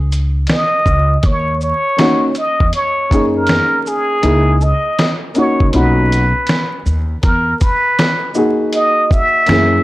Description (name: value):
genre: hip hop, jazz-hop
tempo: 80 BPM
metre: 4/4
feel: swing 64% on 16ths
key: unclear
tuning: A4 = 440 Hz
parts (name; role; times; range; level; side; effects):
- trumpet with plunger mute; melody; 0.0-9.8 s; G#4 to E5; -15 LUFS; equal; none
- upright bass; bass; 0.0-9.8 s; B1 to F#2; -16 LUFS; equal; transformer saturation
- dusty soul sampler-style drum kit; drums; 0.1-9.7 s; hi-hat, kick drum, shaker, snare drum; -16 LUFS; equal; none
- dark grand piano; accompaniment; 2.0-9.8 s; A#2 to G#4; -16 LUFS; left 1 dB; none
room: light reverb, small room reverb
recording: dry, gritty hardware recording, vinyl crackle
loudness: -12 LUFS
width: side -17 dB against mid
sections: 0.0-7.2 A section; 7.2-9.8 B section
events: break 0.0-1.2; kick muted 5.7-7.2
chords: 0.0 C#sus2; 1.2 D#m7; 4.2 C#m69; 5.7 Bmaj7; 7.2 Emaj9#11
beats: 0.48 | 1.24 1.99 2.73 3.48 | 4.24 4.99 5.74 6.49 | 7.24 7.99 8.73 9.48